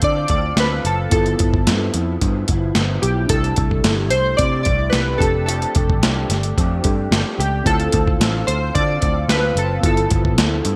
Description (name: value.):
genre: indie pop, bedroom pop.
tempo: 110 BPM.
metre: 4/4.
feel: straight.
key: D dorian.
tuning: A4 = 440 Hz.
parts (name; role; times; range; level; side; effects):
chorused retro synth keys; melody; 0.0-10.8 s; G4 to D5; -24 LUFS; equal; analog chorus, delay.
electric guitar through a small old amp; accompaniment; 0.0-10.8 s; G2 to A4; -29 LUFS; equal; ensemble chorus, warbly pitch drift.
reed electric piano; accompaniment; 0.0-10.8 s; B3 to A4; -31 LUFS; equal; cassette tape.
vintage muted picked electric bass; bass; 0.0-10.8 s; F1 to D3; -23 LUFS; equal; none.
dusty soul sampler-style drum kit; drums; 0.0-10.8 s; hi-hat, kick drum, snare drum; -22 LUFS; equal; overdrive, gated reverb.
room: light reverb.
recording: bright 1980s-style digital production.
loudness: -18 LUFS.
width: mono.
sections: 0.0-10.8 A section.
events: none.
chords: 0.0 Dm7; 1.1 G13; 3.3 C6; 5.2 F69; 7.7 Dm7; 9.8 G13.